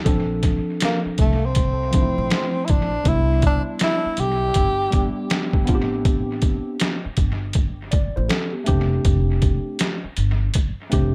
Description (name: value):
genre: hip hop, jazz-hop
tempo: 80 BPM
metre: 4/4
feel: swing 66% on 16ths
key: unclear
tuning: A4 = 439 Hz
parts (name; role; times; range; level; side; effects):
- tine electric piano; accompaniment; 0.0-11.1 s; F3 to D5; -28 LUFS; equal; none
- upright bass; bass; 0.1-11.1 s; F1 to C2; -26 LUFS; equal; none
- trip hop sampler-style drum kit; drums; 0.1-11.1 s; hi-hat, kick drum, snare drum; -23 LUFS; equal; overdrive, dub echo
- breathy tenor saxophone; melody; 0.8-5.3 s; A3 to G4; -26 LUFS; equal; dub echo
room: light reverb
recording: echo-heavy mix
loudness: -21 LUFS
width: mono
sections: 0.0-11.1 A section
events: none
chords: 0.0 Bbmaj9; 3.0 Cmaj9; 5.7 Am11; 8.7 F69